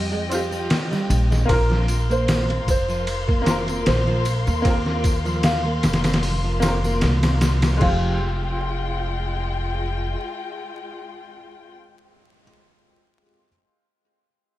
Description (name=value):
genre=trip hop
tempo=76 BPM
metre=4/4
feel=swing 54% on 16ths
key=F minor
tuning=A4 = 440 Hz
part: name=bright upright piano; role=accompaniment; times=0.0-13.5 s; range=Ab3 to Bb4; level=-29 LUFS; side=equal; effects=tremolo, tape echo
part: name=dark chamber string section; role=sustained chords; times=0.0-11.7 s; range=Ab3 to C6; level=-31 LUFS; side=left 5 dB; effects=vintage 12-bit sampler grit
part: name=nylon-string guitar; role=arpeggios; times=0.0-8.2 s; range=F3 to C4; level=-30 LUFS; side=right 2 dB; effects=ping-pong delay
part: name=upright bass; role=bass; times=0.0-10.1 s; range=F1 to F2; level=-23 LUFS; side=equal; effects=none
part: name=trip hop sampler-style drum kit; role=drums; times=0.3-8.0 s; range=crash cymbal, hi-hat, kick drum, ride cymbal, snare drum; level=-23 LUFS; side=equal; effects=studio reverb
part: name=tambourine and triangle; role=percussion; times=0.3-7.8 s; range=none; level=-38 LUFS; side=equal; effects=none
part: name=felt-muted upright piano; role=melody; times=1.5-12.4 s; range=Bb4 to F5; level=-28 LUFS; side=right 1 dB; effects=tape echo
room=studio reverb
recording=vinyl crackle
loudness=-19 LUFS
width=side -15 dB against mid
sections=0.0-7.8 A section; 7.8-11.0 B section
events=none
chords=0.0 Fmadd9; 1.5 Bbsus2; 7.8 Fmadd9